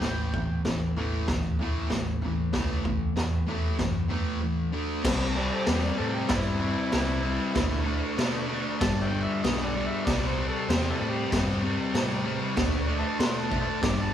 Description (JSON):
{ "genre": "garage rock duo or trio", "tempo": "96 BPM", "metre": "4/4", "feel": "straight", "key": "unclear", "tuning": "A4 = 440 Hz", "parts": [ { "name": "overdriven harmonica", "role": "melody", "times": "0.0-0.6, 5.4-14.1 s", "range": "G3 to D6", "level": "-34 LUFS", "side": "equal", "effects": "none" }, { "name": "fuzz guitar", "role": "riff", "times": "0.0-14.1 s", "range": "G2 to D4", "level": "-29 LUFS", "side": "left 1 dB", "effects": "distortion" }, { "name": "hollow-body short-scale picked electric bass", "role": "bass", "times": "0.0-14.1 s", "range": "G1 to B2", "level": "-32 LUFS", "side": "equal", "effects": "none" }, { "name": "raw garage drum kit", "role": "drums", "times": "0.0-14.0 s", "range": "crash cymbal, kick drum, snare drum, toms", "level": "-28 LUFS", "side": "equal", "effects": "none" } ], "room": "light reverb", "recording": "band playing live in one room", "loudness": "-25 LUFS", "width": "side -10 dB against mid", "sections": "0.0-5.0 A section; 5.0-14.1 B section", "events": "none", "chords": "0.0 A5; 4.7 D5; 5.0 C; 7.6 D5; 8.8 G; 10.1 C5; 12.6 D5" }